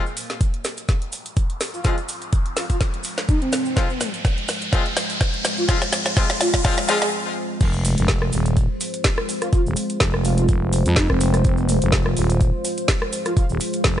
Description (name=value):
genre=bass house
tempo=125 BPM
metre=4/4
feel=swing 55% on 16ths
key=F minor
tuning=A4 = 440 Hz
part: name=deep dark ambient pad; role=sustained chords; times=0.0-14.0 s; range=Ab3 to C5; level=-28 LUFS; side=equal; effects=chorus, built-in reverb, sidechain pumping
part: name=brilliant horn section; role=stabs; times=0.0-7.0 s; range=F3 to F4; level=-27 LUFS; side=left 4 dB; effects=sidechain pumping, ping-pong delay
part: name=riser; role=sound effects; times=1.2-7.1 s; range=none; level=-29 LUFS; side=equal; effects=none
part: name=cabasa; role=percussion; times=0.1-13.9 s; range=none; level=-33 LUFS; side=right 4 dB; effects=none
part: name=garage drum kit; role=drums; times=0.2-14.0 s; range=crash cymbal, hi-hat, rim click, snare drum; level=-25 LUFS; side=equal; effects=none
part: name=electronic kick drum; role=drums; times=0.4-14.0 s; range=none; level=-20 LUFS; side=equal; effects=none
part: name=breathy flute-like synth lead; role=melody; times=1.7-13.4 s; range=C4 to Ab4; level=-26 LUFS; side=right 1 dB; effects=analog chorus, cassette tape, ping-pong delay
part: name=growling FM bass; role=bass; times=7.6-14.0 s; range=Eb1 to F2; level=-20 LUFS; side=equal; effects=sidechain pumping
room=light reverb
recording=nothing above 10.8 kHz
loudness=-18 LUFS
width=side -11 dB against mid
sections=0.0-7.6 A section; 7.6-14.0 B section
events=build-up 0.0-7.6; drum fill 0.0-7.1; filter sweep on ambient pad 0.0-7.6; riser 1.2-7.1; break 7.1-7.6; drop 7.6-14.0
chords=0.0 Fm